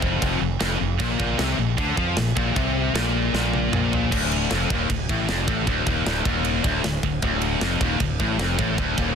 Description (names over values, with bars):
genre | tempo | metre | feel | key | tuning
heavy metal | 154 BPM | 4/4 | straight | D minor | A4 = 440 Hz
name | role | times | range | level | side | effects
distorted electric guitar | riff | 0.0-9.2 s | D2 to F3 | -26 LUFS | left 15 dB | overdrive
heavy high-gain guitar | riff | 0.0-9.2 s | D2 to F3 | -26 LUFS | right 16 dB | distortion
growling fingered electric bass | bass | 0.0-9.2 s | D1 to F2 | -26 LUFS | right 1 dB | overdrive
tight metal drum kit | drums | 0.0-9.1 s | crash cymbal, kick drum, ride cymbal, snare drum, toms | -26 LUFS | right 1 dB | soft clipping on kick
room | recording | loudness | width
little or no reverb | dense, heavily limited modern master | -20 LUFS | side -7 dB against mid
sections
0.0-4.1 A section; 4.1-9.2 B section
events
drum fill 3.3-4.1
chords
0.0 F5; 1.0 Bb5; 4.1 Dm